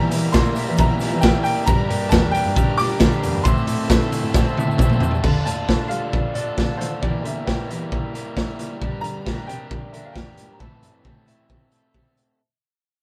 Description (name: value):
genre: indie rock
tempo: 134 BPM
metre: 4/4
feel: straight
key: D minor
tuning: A4 = 440 Hz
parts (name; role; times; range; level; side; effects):
- bright upright piano; melody; 0.0-11.9 s; C5 to D6; -29 LUFS; equal; none
- tonewheel organ; sustained chords; 0.0-5.2 s; C5 to E6; -40 LUFS; equal; none
- crunchy overdriven guitar; riff; 0.0-12.4 s; E2 to Bb4; -30 LUFS; equal; none
- overdriven electric guitar; riff; 0.0-12.4 s; A2 to G4; -33 LUFS; equal; none
- dark cello; bass; 0.1-12.4 s; E2 to A3; -30 LUFS; equal; none
- raw garage drum kit; drums; 0.1-12.3 s; crash cymbal, hi-hat, kick drum, snare drum, toms; -22 LUFS; equal; none
- egg shaker; percussion; 0.1-5.2 s; none; -45 LUFS; equal; none
room: light reverb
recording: band playing live in one room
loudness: -20 LUFS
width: mono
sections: 0.0-5.2 A section; 5.2-12.4 B section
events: drum fill 4.3-5.2; fade-out 5.2-12.4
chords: 0.0 Edim; 1.7 Gm; 3.5 Am; 5.2 Dm; 7.0 Edim; 8.8 Gm; 10.6 Am